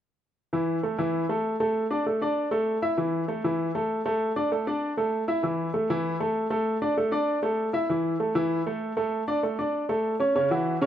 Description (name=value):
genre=jazz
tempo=195 BPM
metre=4/4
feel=straight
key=unclear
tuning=A4 = 440 Hz
part: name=clear baby grand piano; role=solo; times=0.5-10.9 s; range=C#3 to E5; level=-24 LUFS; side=equal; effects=none
room=moderate large studio reverb, RT60 1.2 s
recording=none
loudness=-24 LUFS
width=side -10 dB against mid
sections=0.5-10.4 A section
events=none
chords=0.5 Esus4; 1.8 Asus4; 3.0 Esus4; 4.2 Asus4; 5.4 Esus4; 6.7 Asus4; 7.9 Esus4; 9.1 Aadd11; 10.4 F#5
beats=| 0.53 0.84 1.14 1.45 | 1.75 2.06 2.37 2.67 | 2.98 3.29 3.59 3.90 | 4.21 4.51 4.82 5.13 | 5.44 5.74 6.05 6.36 | 6.67 6.97 7.28 7.59 | 7.89 8.20 8.51 8.82 | 9.12 9.43 9.74 10.04 | 10.35 10.66